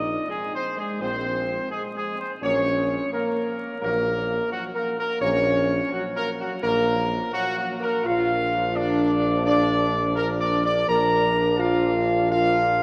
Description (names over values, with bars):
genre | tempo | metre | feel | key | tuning
classical | 85 BPM | 4/4 | straight | Bb major | A4 = 439 Hz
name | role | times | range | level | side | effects
mellow trumpet section | melody | 0.0-12.8 s | Gb4 to Bb5 | -26 LUFS | equal | none
warm French horn section | sustained chords | 0.0-12.8 s | Gb3 to Bb4 | -29 LUFS | equal | none
warm tuba | bass | 0.0-12.8 s | Bb1 | -31 LUFS | equal | none
warm trombone section | sustained chords | 1.0-12.8 s | F3 to D4 | -36 LUFS | equal | none
room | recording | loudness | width
wet cathedral reverb, RT60 5.1 s | worn, warbling old tape, cassette tape, vinyl crackle, warbly pitch drift | -23 LUFS | mono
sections
0.0-12.8 A section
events
none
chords
0.0 Bb7sus2; 2.4 Gb/Bb; 8.1 Bb